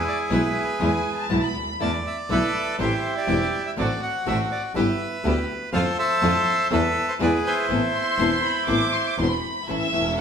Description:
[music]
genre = tango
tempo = 121 BPM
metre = 4/4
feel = rubato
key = A minor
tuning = A4 = 442 Hz
[part]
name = bandoneon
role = melody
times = 0.0-9.2 s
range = E4 to A5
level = -24 LUFS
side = right 1 dB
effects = none
[part]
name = nylon-string guitar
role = accompaniment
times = 0.3-10.0 s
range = B2 to F#4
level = -27 LUFS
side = left 3 dB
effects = none
[part]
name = bright symphonic string section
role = stabs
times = 0.3-10.2 s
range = G#3 to A4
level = -32 LUFS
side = right 1 dB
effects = none
[part]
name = clear double bass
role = bass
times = 0.3-10.2 s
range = E1 to F2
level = -28 LUFS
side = right 2 dB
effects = none
[part]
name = warm studio violin section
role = second line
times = 0.8-1.7, 7.9-10.2 s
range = E5 to D6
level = -26 LUFS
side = left 1 dB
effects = none
[sound]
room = wet large studio reverb, RT60 1.2 s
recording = band playing live in one room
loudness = -20 LUFS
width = side -7 dB against mid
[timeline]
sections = 0.0-9.7 A section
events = none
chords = 0.0 E; 1.8 E7sus4; 2.8 Am7; 3.8 D7/A; 4.8 G6; 5.7 Dm7/F; 6.7 Esus4; 7.2 E; 7.7 Amadd9; 9.7 A

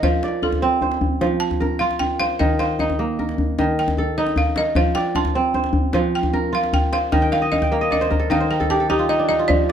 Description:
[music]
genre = west african traditional, West African string and xylophone music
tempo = 102 BPM (dotted quarters)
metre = 12/8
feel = straight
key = unclear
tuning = A4 = 441 Hz
[part]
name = balafon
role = melody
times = 0.0-9.7 s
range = A4 to A5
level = -23 LUFS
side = equal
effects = plate reverb
[part]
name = kora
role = arpeggios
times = 0.0-9.7 s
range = Eb3 to G5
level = -20 LUFS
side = right 2 dB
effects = none
[part]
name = djembe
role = percussion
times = 0.0-9.7 s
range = none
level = -22 LUFS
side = left 1 dB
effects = none
[sound]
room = light reverb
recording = dark, warm production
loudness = -17 LUFS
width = side -8 dB against mid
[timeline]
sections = 0.0-9.5 A section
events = balafon solo 0.0-9.5; kora fill 7.2-9.5; drum fill 8.9-9.5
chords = 0.0 F; 2.4 Eb5; 4.8 F5; 7.1 Eb5

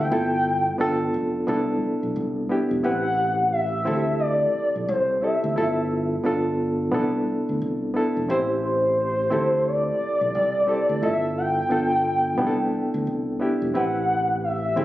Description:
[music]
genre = R&B, neo-soul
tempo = 88 BPM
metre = 4/4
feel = swing 62% on 16ths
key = A minor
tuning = A4 = 440 Hz
[part]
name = gliding portamento lead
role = melody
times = 0.0-14.8 s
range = C5 to G5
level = -23 LUFS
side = left 1 dB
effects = chorus, slapback echo
[part]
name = bright reed electric piano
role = accompaniment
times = 0.0-14.8 s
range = A3 to C5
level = -24 LUFS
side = equal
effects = fast tremolo
[part]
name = fingered electric bass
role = bass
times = 0.0-14.8 s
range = E1 to D2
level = -30 LUFS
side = equal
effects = none
[sound]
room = moderate echo chamber reverb, RT60 1.7 s, digital ambience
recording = recorded on a phone in the room, club reverb, compression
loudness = -21 LUFS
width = side -15 dB against mid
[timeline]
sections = 0.0-14.8 A section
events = none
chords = 0.1 G13; 0.8 G9; 1.5 Cmaj13; 2.8 Am9; 3.9 D9sus4; 5.6 G13; 6.2 G9; 6.9 Cmaj13; 8.3 Am7; 9.3 D9sus4; 11.0 G13; 11.7 G9; 12.4 Cmaj13; 13.7 Am9

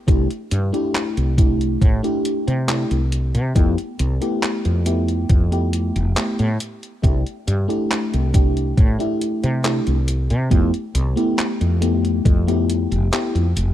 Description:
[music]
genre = vaporwave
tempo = 69 BPM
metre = 4/4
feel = straight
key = C major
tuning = A4 = 437 Hz
[part]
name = mellow FM electric piano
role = accompaniment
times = 0.1-13.5 s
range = A3 to G4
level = -22 LUFS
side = left 1 dB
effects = phaser, wide subtle chorus, tape echo
[part]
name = woody fretless electric bass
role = bass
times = 0.1-13.7 s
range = F1 to C3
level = -19 LUFS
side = equal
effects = analog chorus
[part]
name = detuned 8-bit digital drum machine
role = drums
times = 0.1-13.7 s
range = handclaps, hi-hat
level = -26 LUFS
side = equal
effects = none
[part]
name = electronic kick drum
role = drums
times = 0.1-12.4 s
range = none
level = -15 LUFS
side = equal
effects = none
[sound]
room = light reverb, digital ambience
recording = cassette tape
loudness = -17 LUFS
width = side -12 dB against mid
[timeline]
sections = 0.0-13.7 A section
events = none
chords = 0.1 C69; 3.6 Fmaj9#11; 7.0 C69; 10.5 Fmaj9#11

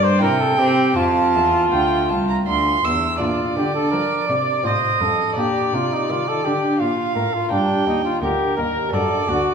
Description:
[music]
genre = classical, baroque-style sonata movement with continuo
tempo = 83 BPM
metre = 3/4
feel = straight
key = F major, Bb major from 3.2 s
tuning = A4 = 439 Hz
[part]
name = warm trumpet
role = melody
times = 0.0-9.5 s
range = D4 to D5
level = -21 LUFS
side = left 4 dB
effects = none
[part]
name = dark violin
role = second line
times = 0.0-9.5 s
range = Bb4 to E6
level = -21 LUFS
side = right 5 dB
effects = none
[part]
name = lute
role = accompaniment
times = 0.0-9.5 s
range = D2 to G4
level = -26 LUFS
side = equal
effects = none
[part]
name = rich cello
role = bass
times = 0.0-9.5 s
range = C2 to C4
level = -24 LUFS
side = right 2 dB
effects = none
[sound]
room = wet recital hall reverb, RT60 1.5 s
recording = recorded in a church or concert hall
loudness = -17 LUFS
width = side -6 dB against mid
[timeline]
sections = 0.0-3.2 A section; 3.2-9.5 A section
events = none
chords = 0.2 C; 1.0 F; 3.2 Bb; 4.7 F/A; 5.4 Bb; 7.5 Gm; 8.9 D/F#

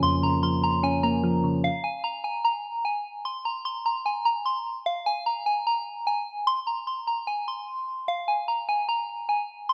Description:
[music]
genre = hip hop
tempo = 149 BPM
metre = 4/4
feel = half-time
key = unclear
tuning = A4 = 439 Hz
[part]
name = soft synth bell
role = melody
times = 0.0-9.7 s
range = F5 to C6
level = -28 LUFS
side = equal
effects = chorus, phaser, low-pass filter
[part]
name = soft electric-piano-like synth keys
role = accompaniment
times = 0.0-1.7 s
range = F2 to Db4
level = -26 LUFS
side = equal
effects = chorus, low-pass filter
[sound]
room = wet spring reverb, RT60 1.4 s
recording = none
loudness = -27 LUFS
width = mono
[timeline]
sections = 0.0-1.6 A section; 1.6-9.7 B section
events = none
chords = 0.0 Bbm/F; 1.6 N.C.

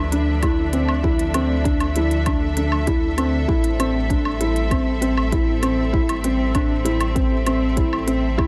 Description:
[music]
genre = piano and strings electronica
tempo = 98 BPM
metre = 4/4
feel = straight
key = A minor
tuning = A4 = 440 Hz
[part]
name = dark studio string section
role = sustained chords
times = 0.0-8.5 s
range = F3 to E5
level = -29 LUFS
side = equal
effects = sidechain pumping
[part]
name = dark detuned saw bass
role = bass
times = 0.0-8.5 s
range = A1 to D2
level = -26 LUFS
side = equal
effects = sidechain pumping
[part]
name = felt-muted upright piano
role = riff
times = 0.1-8.5 s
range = C4 to E4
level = -24 LUFS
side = equal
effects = tape echo
[part]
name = electronic hi-hat and woodblock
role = drums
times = 0.1-8.5 s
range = none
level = -30 LUFS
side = equal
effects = none
[part]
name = electronic kick drum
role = drums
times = 0.4-8.5 s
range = none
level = -25 LUFS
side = equal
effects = none
[sound]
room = digital ambience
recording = none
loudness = -20 LUFS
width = mono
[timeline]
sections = 0.0-8.5 A section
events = none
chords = 0.0 Dmadd9; 3.5 Am7

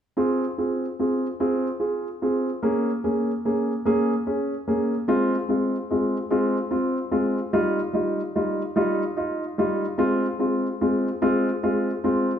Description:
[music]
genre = pop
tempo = 49 BPM (dotted quarters)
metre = 6/8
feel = straight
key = F minor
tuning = A4 = 441 Hz
[part]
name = warm concert grand piano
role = solo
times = 0.2-12.3 s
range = G3 to Ab4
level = -22 LUFS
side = equal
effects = none
[sound]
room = wet recital hall reverb, RT60 1.7 s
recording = recorded in a church or concert hall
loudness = -22 LUFS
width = side -9 dB against mid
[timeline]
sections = 0.2-10.0 A section; 10.0-12.4 B section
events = none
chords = 0.2 Fm; 2.6 Bbm7; 5.1 Fm; 7.5 Ebadd9; 10.0 Fm

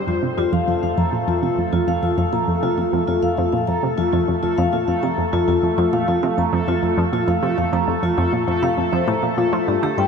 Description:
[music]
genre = ambient, sequencer-driven space music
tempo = 100 BPM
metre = 4/4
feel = straight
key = unclear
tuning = A4 = 440 Hz
[part]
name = bubbling stepped-filter texture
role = texture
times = 0.0-10.1 s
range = A3 to A4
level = -25 LUFS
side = equal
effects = chorus, built-in reverb
[part]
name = vibraphone with soft mallets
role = arpeggios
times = 0.1-10.1 s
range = F4 to Bb5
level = -21 LUFS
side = moving between left 6 dB and right 1 dB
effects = auto-pan, analog delay
[part]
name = analog pluck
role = riff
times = 0.1-10.1 s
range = F2 to F3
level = -21 LUFS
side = right 1 dB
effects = chorus, analog delay
[sound]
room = wet huge ambient reverb, RT60 7.4 s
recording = none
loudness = -17 LUFS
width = side -6 dB against mid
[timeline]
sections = 0.0-10.1 A section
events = none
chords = 0.1 Fsus4

